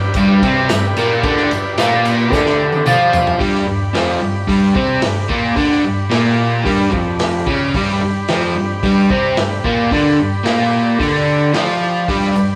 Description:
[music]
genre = garage rock duo or trio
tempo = 111 BPM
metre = 4/4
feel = straight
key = G mixolydian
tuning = A4 = 441 Hz
[part]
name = combo organ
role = sustained chords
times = 0.0-12.6 s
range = G4 to B5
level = -26 LUFS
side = equal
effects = none
[part]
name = crunchy overdriven guitar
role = riff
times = 0.0-12.6 s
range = F2 to F4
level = -16 LUFS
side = equal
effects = none
[part]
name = tambourine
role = percussion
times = 0.0-3.3, 12.2-12.5 s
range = none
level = -41 LUFS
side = equal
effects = none
[part]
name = crunchy breakbeat drum kit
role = drums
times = 0.1-12.3 s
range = hi-hat, kick drum, ride cymbal, snare drum, toms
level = -24 LUFS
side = equal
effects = none
[sound]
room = wet large studio reverb, RT60 1.2 s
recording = band playing live in one room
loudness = -15 LUFS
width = mono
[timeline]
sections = 0.0-3.4 A section; 3.4-12.6 B section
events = drum fill 2.3-3.4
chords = 0.0 G

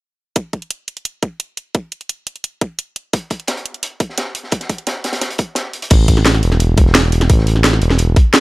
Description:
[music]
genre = liquid drum and bass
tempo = 173 BPM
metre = 4/4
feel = straight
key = unclear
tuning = A4 = 439 Hz
[part]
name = electronic kick drum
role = drums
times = 0.4-8.2 s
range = none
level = -13 LUFS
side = equal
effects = overdrive, high-pass filter on kick
[part]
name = garage drum kit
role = drums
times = 0.4-8.4 s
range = crash cymbal, hi-hat, snare drum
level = -16 LUFS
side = equal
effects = overdrive
[part]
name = crunchy breakbeat drum kit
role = drums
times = 3.1-8.4 s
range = hi-hat, snare drum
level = -24 LUFS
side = equal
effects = high-pass filter on hats, high-pass filter on snare, high-pass filter on room
[part]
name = smooth synth bass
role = bass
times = 5.9-8.2 s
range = E1 to A1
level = -13 LUFS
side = equal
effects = none
[sound]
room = small room ambience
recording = none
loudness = -14 LUFS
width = side -20 dB against mid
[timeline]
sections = 0.4-5.9 A section; 5.9-8.4 B section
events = drop 5.9-8.4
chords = none

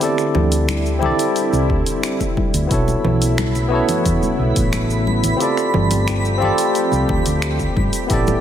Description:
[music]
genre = sunset chillout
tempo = 89 BPM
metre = 4/4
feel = straight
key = unclear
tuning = A4 = 440 Hz
[part]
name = barky tine electric piano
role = accompaniment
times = 0.0-8.4 s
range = B3 to D5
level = -20 LUFS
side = equal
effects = auto-pan, tape echo
[part]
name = lush unison pad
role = sustained chords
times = 0.0-8.4 s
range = C#3 to G4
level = -24 LUFS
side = equal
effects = chorus, vintage 12-bit sampler grit
[part]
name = deep house drum kit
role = drums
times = 0.0-8.4 s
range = congas, finger snaps, hi-hat, shaker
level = -26 LUFS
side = right 2 dB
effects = studio reverb
[part]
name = hollow-body short-scale fingered electric bass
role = bass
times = 0.3-8.3 s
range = G1 to E2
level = -19 LUFS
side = equal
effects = none
[part]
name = congas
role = percussion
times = 0.4-8.4 s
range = none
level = -28 LUFS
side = left 4 dB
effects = none
[part]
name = electronic kick drum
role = drums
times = 1.7-8.2 s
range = none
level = -22 LUFS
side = equal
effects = studio reverb
[part]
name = twinkling granular texture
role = texture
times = 3.5-8.4 s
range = B5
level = -27 LUFS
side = right 3 dB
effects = built-in reverb
[sound]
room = light reverb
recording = none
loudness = -15 LUFS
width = side -10 dB against mid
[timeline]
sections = 0.0-8.4 A section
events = none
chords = 0.0 D9sus4; 2.7 B9sus4; 5.4 G9sus4

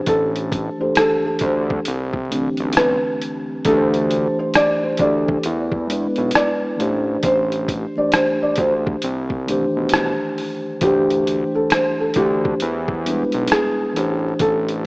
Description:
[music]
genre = lo-fi hip hop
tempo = 67 BPM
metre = 4/4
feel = swing 62% on 16ths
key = unclear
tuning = A4 = 440 Hz
[part]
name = mellow tine electric piano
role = accompaniment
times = 0.0-14.9 s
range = D3 to C5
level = -22 LUFS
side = equal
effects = medium stereo tremolo, cassette tape
[part]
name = felt-muted upright piano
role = melody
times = 0.1-14.9 s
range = G4 to D5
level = -20 LUFS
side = equal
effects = none
[part]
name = fat analog bass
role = bass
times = 0.1-14.9 s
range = A1 to E2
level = -24 LUFS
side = equal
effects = none
[part]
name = lo-fi sampler-style drum kit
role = drums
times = 0.1-14.8 s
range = hi-hat, kick drum, rim click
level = -21 LUFS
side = equal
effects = none
[part]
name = finger snap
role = percussion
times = 11.7-13.8 s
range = none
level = barely audible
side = none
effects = none
[sound]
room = moderate lush hall reverb, RT60 2.6 s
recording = rough home demo mix, vinyl crackle, small speaker sound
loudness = -17 LUFS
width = side -27 dB against mid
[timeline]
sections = 0.0-14.9 A section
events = none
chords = 0.0 Am7; 1.9 Cmaj7; 3.7 D5; 5.4 E7; 6.8 Am7; 9.0 Cmaj7; 10.8 D5; 12.6 E7; 14.0 Am7

